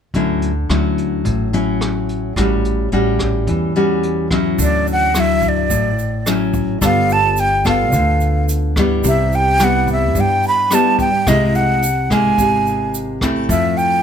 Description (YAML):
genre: bossa nova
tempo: 108 BPM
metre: 4/4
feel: straight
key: D major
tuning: A4 = 441 Hz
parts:
  - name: upright bass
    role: bass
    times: 0.1-14.0 s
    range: G1 to G2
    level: -21 LUFS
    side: right 1 dB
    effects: none
  - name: jazz brush drum kit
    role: drums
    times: 0.1-13.9 s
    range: hi-hat, kick drum, rim click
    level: -25 LUFS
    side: right 1 dB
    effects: none
  - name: nylon-string guitar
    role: accompaniment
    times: 0.2-14.0 s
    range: G2 to A4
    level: -17 LUFS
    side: left 2 dB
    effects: none
  - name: breathy jazz flute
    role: melody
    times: 4.6-14.0 s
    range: D5 to B5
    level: -16 LUFS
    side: right 2 dB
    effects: plate reverb
  - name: tube shaker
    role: percussion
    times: 4.6-14.0 s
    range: none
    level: -27 LUFS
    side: right 6 dB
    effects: none
room: light reverb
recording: close, detailed microphones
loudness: -14 LUFS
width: side -8 dB against mid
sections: 0.1-4.6 A section; 4.6-14.0 B section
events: none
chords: 0.1 Dmaj9; 2.4 A6; 4.6 Dmaj9; 6.8 G9; 9.0 Cmaj7; 11.3 Caug7; 13.5 Fmaj7